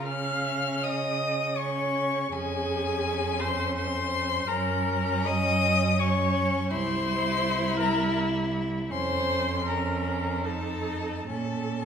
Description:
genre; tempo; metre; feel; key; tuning
classical, slow romantic movement for string quartet; 69-85 BPM; 3/4; rubato; unclear; A4 = 440 Hz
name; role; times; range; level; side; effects
rich violin; melody; 0.0-11.8 s; Ab5 to F6; -30 LUFS; left 8 dB; none
clear violin; second line; 0.0-11.8 s; Db4 to E4; -31 LUFS; left 1 dB; none
rich viola; accompaniment; 0.0-11.8 s; Ab4 to F5; -32 LUFS; right 3 dB; none
rich cello; bass; 0.0-11.8 s; C2 to Db3; -30 LUFS; right 4 dB; none
room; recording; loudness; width
wet recital hall reverb, RT60 1.5 s; minimal, uncompressed stereo recording; -25 LUFS; side -7 dB against mid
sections
0.0-11.8 A section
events
none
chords
0.1 Db; 2.3 Db/F; 4.5 Gb; 6.7 C; 8.9 Bbm/F; 10.4 F7; 11.3 Bbm

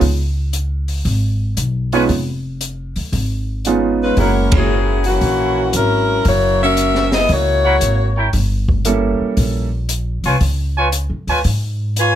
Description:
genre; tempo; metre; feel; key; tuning
jazz, big band swing; 115 BPM; 4/4; swing 67% on 8ths; unclear; A4 = 443 Hz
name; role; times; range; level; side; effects
upright bass; bass; 0.0-12.2 s; F1 to Ab2; -18 LUFS; equal; none
open jazz drum kit; drums; 0.0-12.1 s; hi-hat, kick drum, ride cymbal, snare drum; -21 LUFS; equal; none
clear baby grand piano; accompaniment; 1.9-5.0, 8.9-9.7 s; G3 to A4; -18 LUFS; right 5 dB; none
dark trumpet section; stabs; 1.9-11.4 s; Fb4 to Ab5; -20 LUFS; equal; none
clear saxophone section; melody; 4.0-8.2, 12.0-12.2 s; Fb3 to Ab5; -16 LUFS; left 2 dB; plate reverb
room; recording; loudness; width
moderate club reverb, RT60 0.5 s; none; -14 LUFS; side -11 dB against mid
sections
0.0-12.2 A section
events
band accent 4.4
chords
0.0 Db7; 4.2 Gb7; 8.3 Gdim7; 10.4 Db7

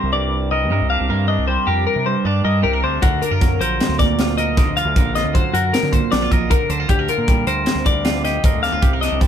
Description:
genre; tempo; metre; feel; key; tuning
math rock and midwest emo; 155 BPM; 5/4; straight; C minor; A4 = 440 Hz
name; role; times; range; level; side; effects
twangy electric guitar; accompaniment; 0.0-9.3 s; G2 to Bb4; -22 LUFS; right 8 dB; none
twelve-string electric guitar; arpeggios; 0.0-9.3 s; F#4 to F5; -21 LUFS; left 6 dB; none
growling fingered electric bass; bass; 0.0-9.3 s; A#1 to D3; -22 LUFS; equal; overdrive
crisp fusion drum kit; drums; 3.0-9.3 s; hi-hat, kick drum, snare drum; -18 LUFS; equal; none
room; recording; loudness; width
light reverb; band playing live in one room; -15 LUFS; side -9 dB against mid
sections
0.0-9.3 A section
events
none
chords
0.0 Cm9; 3.0 D7alt; 6.9 Gm7/D

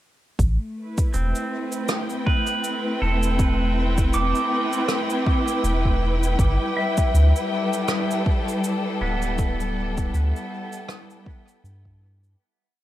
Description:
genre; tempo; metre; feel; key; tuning
ambient dub; 80 BPM; 4/4; swing 57% on 16ths; A minor; A4 = 438 Hz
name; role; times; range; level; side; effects
warm studio string section; sustained chords; 0.4-12.4 s; G3 to G5; -25 LUFS; left 1 dB; none
warm sub bass; bass; 0.4-12.4 s; D1 to G2; -21 LUFS; equal; none
cabasa and rim click; drums; 0.4-12.4 s; none; -31 LUFS; right 1 dB; dub echo
electronic kick drum; drums; 0.4-12.0 s; none; -22 LUFS; equal; overdrive
pedal steel guitar; arpeggios; 1.1-10.8 s; B3 to D6; -28 LUFS; right 2 dB; dub echo
room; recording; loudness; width
light reverb, studio ambience; none; -20 LUFS; side -14 dB against mid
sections
0.4-12.4 groove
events
fade-out 8.4-12.4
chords
0.4 Am9; 6.4 G69

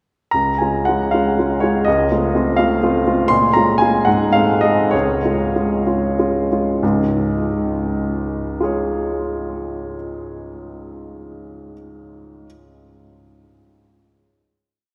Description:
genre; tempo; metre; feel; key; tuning
classical, romantic character piece for solo piano; 60-84 BPM (dotted quarters); 6/8; rubato; Db major; A4 = 439 Hz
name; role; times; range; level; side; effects
warm baby grand piano; solo; 0.3-12.5 s; Db2 to C6; -18 LUFS; equal; none
room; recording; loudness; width
wet cathedral reverb, RT60 6.3 s; none; -18 LUFS; mono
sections
0.3-6.8 A section; 6.8-10.4 final chord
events
slowing down 2.6-6.8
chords
0.3 Db; 1.9 F7/Db; 3.3 Bbm7; 4.1 Ab; 4.9 Db

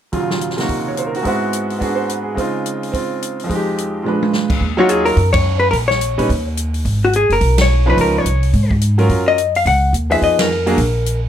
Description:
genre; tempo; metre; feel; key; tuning
jazz, small-group swing and bop; 214 BPM; 4/4; swing 61% on 8ths; Eb dorian, Eb minor from 4.6 s; A4 = 439 Hz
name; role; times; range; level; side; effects
bright upright piano; accompaniment; 0.1-10.8 s; Eb2 to Db5; -18 LUFS; right 2 dB; none
open jazz drum kit; drums; 0.1-11.1 s; crash cymbal, hi-hat, kick drum, ride cymbal, snare drum, toms; -23 LUFS; right 1 dB; none
upright bass; bass; 4.6-11.3 s; Gb1 to Bb2; -16 LUFS; equal; none
vintage hollow-body jazz guitar; melody; 4.8-11.2 s; Gb4 to Gb5; -16 LUFS; left 3 dB; none
room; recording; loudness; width
little or no reverb; close, detailed microphones; -14 LUFS; side -10 dB against mid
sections
0.1-4.6 A section; 4.6-11.3 B section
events
drum fill 4.1; band accent 5.3, 7.6, 10.4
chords
0.1 Ebm7; 1.2 Ab7alt; 2.4 Dbmaj7; 3.5 Fm9; 4.1 Bb7b9; 4.6 Ebm9; 5.7 Bbmadd11; 6.3 N.C.; 6.9 Abmadd9; 8.0 Db9; 9.1 Gbmaj7; 10.2 Fm7b5; 10.8 N.C.

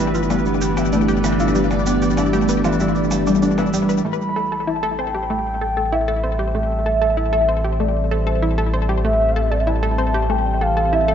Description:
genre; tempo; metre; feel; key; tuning
ambient, sequencer-driven space music; 96 BPM; 4/4; straight; A minor; A4 = 437 Hz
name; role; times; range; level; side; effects
string machine, full ensemble; sustained chords; 0.0-11.1 s; E3 to D5; -24 LUFS; equal; ensemble chorus
Celtic harp; arpeggios; 0.0-6.2 s; E3 to A4; -21 LUFS; equal; auto-pan, ping-pong delay
analog pluck; riff; 0.0-11.1 s; G3 to C5; -24 LUFS; left 1 dB; chorus, ping-pong delay
warm sub bass; bass; 0.0-11.1 s; G1 to A1; -23 LUFS; equal; none
shaker and percussion blips; percussion; 0.1-4.0 s; none; -31 LUFS; right 1 dB; ping-pong delay
mellow horn-like synth lead; melody; 4.1-11.1 s; C5 to B5; -21 LUFS; equal; chorus, phaser, ping-pong delay
room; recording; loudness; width
wet spring reverb, RT60 2.5 s; echo-heavy mix, nothing above 7.8 kHz; -16 LUFS; side -8 dB against mid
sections
0.0-4.1 A section; 4.1-11.1 B section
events
fade-in on string machine 4.1-11.1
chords
0.0 G; 4.1 Am7

